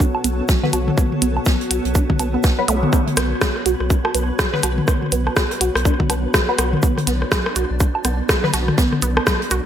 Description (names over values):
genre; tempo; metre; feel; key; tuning
minimal techno; 123 BPM; 4/4; swing 60% on 16ths; B minor; A4 = 440 Hz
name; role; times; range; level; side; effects
resonant blip pluck; riff; 0.0-9.6 s; F#3 to F#4; -25 LUFS; right 3 dB; phaser, sidechain pumping, digital delay
round analog bass; bass; 0.0-9.6 s; B1; -22 LUFS; equal; tube saturation, sidechain pumping
electronic kick drum; drums; 0.0-9.4 s; none; -18 LUFS; equal; overdrive
open jazz drum kit; drums; 0.0-9.6 s; hi-hat, shaker, snare drum; -29 LUFS; right 2 dB; high-pass filter on hats, high-pass filter on snare, high-pass filter on perc, high-pass filter on room, gated reverb
flickering grainy texture; texture; 0.1-9.7 s; B3 to B4; -33 LUFS; equal; built-in reverb, sidechain pumping
granular cloud pad; texture; 0.0-9.7 s; B3 to C#5; -27 LUFS; equal; built-in reverb, sidechain pumping
booming analog drum machine; percussion; 0.1-9.6 s; rim click, toms, woodblock; -23 LUFS; left 2 dB; gated reverb, digital delay
minimal click drum kit; drums; 0.2-9.6 s; hi-hat, rim click; -22 LUFS; equal; overdrive, gated reverb
filtered dub chord stab; stabs; 0.6-8.5 s; F#3 to B4; -26 LUFS; left 3 dB; phaser, analog chorus, digital delay
zap; sound effects; 2.7-2.8 s; none; -27 LUFS; equal; none
room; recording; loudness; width
light reverb; bright 1980s-style digital production; -16 LUFS; side -10 dB against mid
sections
0.0-9.7 A section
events
filter sweep on synth pluck 0.0-9.7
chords
0.0 B5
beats
0.00 0.49 | 0.98 1.46 1.95 2.44 | 2.93 3.42 3.90 4.39 | 4.88 5.37 5.85 6.34 | 6.83 7.32 7.80 8.29 | 8.78 9.27